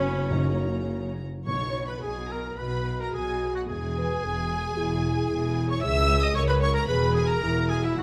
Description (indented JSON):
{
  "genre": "quick classical-period movement for symphony orchestra",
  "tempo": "111 BPM",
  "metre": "4/4",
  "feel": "uneven beats, rubato",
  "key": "unclear",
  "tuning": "A4 = 440 Hz",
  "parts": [
    { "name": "warm symphonic violin section", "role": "melody", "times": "0.0-8.0 s", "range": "E5 to E6", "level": "-36 LUFS", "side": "equal", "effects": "none" },
    { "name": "mellow hollow large flute ensemble", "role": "second line", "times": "0.0-1.1 s", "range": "C#5", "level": "-42 LUFS", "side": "equal", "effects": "none" },
    { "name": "rich studio violin section", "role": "second line", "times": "0.0-8.0 s", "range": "E4 to E5", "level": "-40 LUFS", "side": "equal", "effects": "none" },
    { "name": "rich chamber viola section", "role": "accompaniment", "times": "0.0-8.0 s", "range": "C#4 to E5", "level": "-36 LUFS", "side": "equal", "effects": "none" },
    { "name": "mellow French horn section", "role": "sustained chords", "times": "0.0-8.0 s", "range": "A#3 to B4", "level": "-33 LUFS", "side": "equal", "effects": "none" },
    { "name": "clear trumpet", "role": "stabs", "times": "0.0-1.1 s", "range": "C#4", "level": "-38 LUFS", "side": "equal", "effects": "none" },
    { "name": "clear chamber double bass section", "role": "bass", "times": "0.0-8.0 s", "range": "E1 to C#2", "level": "-32 LUFS", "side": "equal", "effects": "none" },
    { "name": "rich chamber cello section", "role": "bass", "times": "0.0-8.0 s", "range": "C#2 to C#3", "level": "-35 LUFS", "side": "equal", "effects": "none" },
    { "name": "timpani", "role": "percussion", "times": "0.3-2.3 s", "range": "F#2 to B2", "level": "-34 LUFS", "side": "equal", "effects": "none" },
    { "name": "warm oboe", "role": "second line", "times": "1.5-8.0 s", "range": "E4 to E5", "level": "-35 LUFS", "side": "equal", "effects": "none" }
  ],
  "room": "moderate scoring stage reverb, RT60 1.8 s",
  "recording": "none",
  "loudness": "-26 LUFS",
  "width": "mono",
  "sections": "0.0-1.5 A section; 1.5-8.0 B section",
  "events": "none",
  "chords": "0.3 F#; 1.5 B5; 3.7 E; 5.8 C#5; 6.9 E"
}